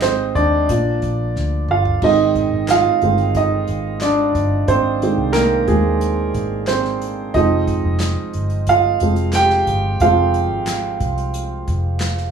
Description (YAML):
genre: piano-driven pop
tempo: 90 BPM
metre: 4/4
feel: straight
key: unclear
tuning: A4 = 440 Hz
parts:
  - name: warm upright piano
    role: accompaniment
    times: 0.0-12.3 s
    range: Eb3 to G5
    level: -17 LUFS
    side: right 3 dB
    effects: plate reverb
  - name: vintage muted fingered electric bass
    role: bass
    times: 0.0-12.3 s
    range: F1 to Eb2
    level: -21 LUFS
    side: equal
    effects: none
  - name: unplugged drum kit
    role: drums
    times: 0.0-12.3 s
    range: crash cymbal, handclaps, hi-hat, kick drum, snare drum, toms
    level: -26 LUFS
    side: equal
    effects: none
room: light reverb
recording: rough home demo mix, small room ambience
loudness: -15 LUFS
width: side -7 dB against mid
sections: 0.0-2.0 A section; 2.0-12.3 B section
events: upright piano solo 0.0-2.0, 2.0-12.3; drum fill 1.4-2.0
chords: 0.0 Ab; 0.7 Bb; 2.0 Ab; 7.3 Fm